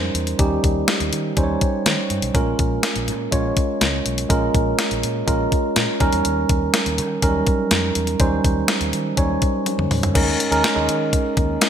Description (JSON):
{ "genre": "1980s-style pop", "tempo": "123 BPM", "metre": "4/4", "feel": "straight", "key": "unclear", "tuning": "A4 = 440 Hz", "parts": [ { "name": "tine electric piano", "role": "accompaniment", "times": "0.0-11.7 s", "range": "Gb3 to Db5", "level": "-21 LUFS", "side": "right 2 dB", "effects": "none" }, { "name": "vintage muted fingered electric bass", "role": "bass", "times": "0.0-11.6 s", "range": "Bb1 to Eb3", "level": "-26 LUFS", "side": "left 1 dB", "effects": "none" }, { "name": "clean 12-bit digital drum machine", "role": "drums", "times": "0.1-11.7 s", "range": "crash cymbal, hi-hat, kick drum, snare drum, toms", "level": "-20 LUFS", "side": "left 1 dB", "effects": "none" } ], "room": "moderate lush hall reverb, RT60 1.8 s, digital ambience", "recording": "bright 1980s-style digital production, faint mains hum", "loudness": "-17 LUFS", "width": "side -9 dB against mid", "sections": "0.0-10.2 A section; 10.2-11.7 B section", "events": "drum fill 9.7-10.2", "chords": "0.0 Eb7; 2.3 Bbm7; 6.0 Eb7; 10.2 Eb7sus4" }